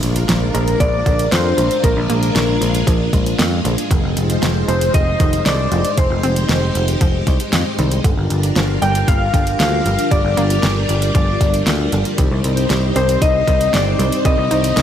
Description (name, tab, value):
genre	synthwave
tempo	116 BPM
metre	4/4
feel	straight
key	F dorian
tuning	A4 = 440 Hz
part	string machine, full ensemble	sustained chords	0.0-14.8 s	G3 to C5	-21 LUFS	equal	ensemble chorus, sidechain pumping
part	picked electric bass	bass	0.0-14.8 s	F1 to F2	-19 LUFS	equal	none
part	pop drum kit	drums	0.0-14.8 s	hi-hat, snare drum	-22 LUFS	equal	none
part	impact	sound effects	0.0-1.8 s	none	-32 LUFS	left 1 dB	none
part	wide unison pluck	arpeggios	0.3-14.8 s	D3 to Eb4	-26 LUFS	right 2 dB	tape echo
part	soft octave-layered synth lead	melody	0.5-14.8 s	Bb4 to G5	-21 LUFS	left 2 dB	chorus, vintage 12-bit sampler grit, digital delay
part	soft synth bell	second line	0.5-14.8 s	Bb4 to G5	-26 LUFS	left 1 dB	chorus, tape echo
part	electronic kick drum	drums	0.8-14.4 s	none	-17 LUFS	equal	overdrive
room	light reverb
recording	none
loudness	-14 LUFS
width	side -10 dB against mid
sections	0.0-14.8 A section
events	impact 0.0-1.8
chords	0.0 Bb7; 3.9 Fm7; 8.0 Gm7; 12.2 Cm